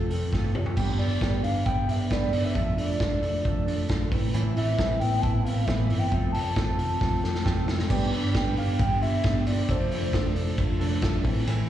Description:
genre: jangly indie pop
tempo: 135 BPM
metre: 4/4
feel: straight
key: unclear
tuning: A4 = 440 Hz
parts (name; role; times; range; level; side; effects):
- warbly nostalgic lead; melody; 0.0-10.6 s; A4 to A5; -31 LUFS; equal; chorus, slapback echo, tape echo
- fingerpicked steel-string acoustic guitar; accompaniment; 0.0-11.7 s; A2 to B4; -32 LUFS; right 8 dB; slapback echo
- electric guitar at the edge of break-up; arpeggios; 0.0-11.7 s; E3 to G4; -32 LUFS; left 4 dB; slapback echo
- vintage muted picked electric bass; bass; 0.0-11.6 s; F1 to A1; -28 LUFS; equal; none
- vintage drum kit; drums; 0.1-11.6 s; crash cymbal, hi-hat, kick drum, ride cymbal, snare drum, toms; -28 LUFS; equal; none
- reed electric piano; accompaniment; 7.9-11.7 s; C4 to A5; -39 LUFS; left 3 dB; slapback echo
room: light reverb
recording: live gig heard through the venue's PA, recital hall reverb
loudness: -23 LUFS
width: side -11 dB against mid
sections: 0.8-7.9 A section; 7.9-11.7 B section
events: drum fill 0.3-0.8, 7.0-7.9; reed electric piano fill 10.6-11.5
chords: 0.0 F; 0.8 G; 2.6 Dm/F; 4.1 Amadd9; 6.1 F; 7.9 G; 9.7 Dm/F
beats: 0.33 | 0.77 1.22 1.66 2.11 | 2.56 3.00 3.45 3.89 | 4.34 4.78 5.23 5.68 | 6.12 6.57 7.01 7.46 | 7.91 8.35 8.80 9.24 | 9.69 10.13 10.58 11.02 | 11.47

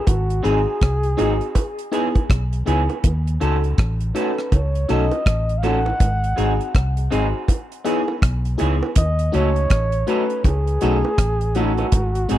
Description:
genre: lovers rock reggae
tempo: 81 BPM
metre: 4/4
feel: swing 61% on 16ths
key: unclear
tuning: A4 = 440 Hz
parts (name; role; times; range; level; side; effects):
- breathy flugelhorn; melody; 0.0-12.4 s; F#4 to F#5; -25 LUFS; equal; tape echo
- vintage muted fingered electric bass; bass; 0.1-12.4 s; G#1 to D#2; -21 LUFS; equal; tube saturation
- deep reggae drum kit; drums; 0.1-12.4 s; hi-hat, kick drum, rim click; -18 LUFS; equal; none
- bongos; percussion; 0.1-12.1 s; none; -29 LUFS; right 6 dB; none
- FM electric piano with soft pad layer; accompaniment; 0.4-12.4 s; G#3 to A4; -24 LUFS; left 4 dB; chorus
- electric guitar through a small old amp; stabs; 0.4-12.4 s; E3 to A4; -27 LUFS; right 5 dB; tube saturation, spring reverb
room: little or no reverb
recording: dry, close 1970s-style studio recording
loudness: -17 LUFS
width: side -13 dB against mid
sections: 0.0-12.4 A section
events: none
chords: 0.1 G#7; 1.6 C#m7; 3.0 D#m7b5; 6.0 G#7; 7.5 C#m7; 9.0 D#m7b5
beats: | 0.07 0.81 1.55 2.29 | 3.04 3.78 4.52 5.26 | 6.00 6.74 7.48 8.22 | 8.96 9.70 10.45 11.19 | 11.93

